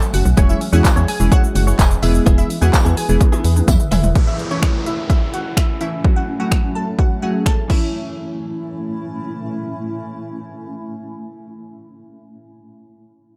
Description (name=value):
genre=dance-pop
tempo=127 BPM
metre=4/4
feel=straight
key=A major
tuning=A4 = 443 Hz
part: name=granular cloud pad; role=sustained chords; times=0.0-11.9 s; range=F#2 to B4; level=-31 LUFS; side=equal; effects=built-in reverb, sidechain pumping
part: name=direct-recorded clean electric guitar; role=riff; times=0.0-4.1 s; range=B3 to C#5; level=-29 LUFS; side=equal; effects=analog chorus
part: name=deep house drum kit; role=drums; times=0.0-7.8 s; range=crash cymbal, finger snaps, handclaps, hi-hat, kick drum, shaker, toms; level=-18 LUFS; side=equal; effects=none
part: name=glassy wavetable pluck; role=melody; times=0.1-9.3 s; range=C#4 to A5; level=-28 LUFS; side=equal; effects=chorus, phaser
part: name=organ-like FM bass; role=bass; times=0.1-4.1 s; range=E1 to E2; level=-18 LUFS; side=equal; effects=sidechain pumping
part: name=glassy digital keys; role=accompaniment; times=0.4-11.9 s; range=E3 to G#4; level=-26 LUFS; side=equal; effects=chorus, sidechain pumping
part: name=tambourine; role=percussion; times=0.8-3.8 s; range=none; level=-34 LUFS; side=equal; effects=none
part: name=downlifter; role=sound effects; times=4.2-7.9 s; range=none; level=-34 LUFS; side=equal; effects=none
room=digital ambience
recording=dark, warm production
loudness=-17 LUFS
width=mono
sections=0.0-4.2 A section; 4.2-7.9 B section; 7.9-11.7 C section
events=drop 0.0-4.2; drum fill 3.2-4.2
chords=0.4 C#m/E; 2.0 E; 4.2 A; 6.0 F#m; 7.7 A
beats=| 0.38 0.85 1.32 1.79 | 2.27 2.74 3.21 3.68 | 4.15 4.63 5.10 5.57 | 6.04 6.52 6.99 7.46 | 7.93 8.41 8.88 9.35 | 9.82 10.30 10.77 11.24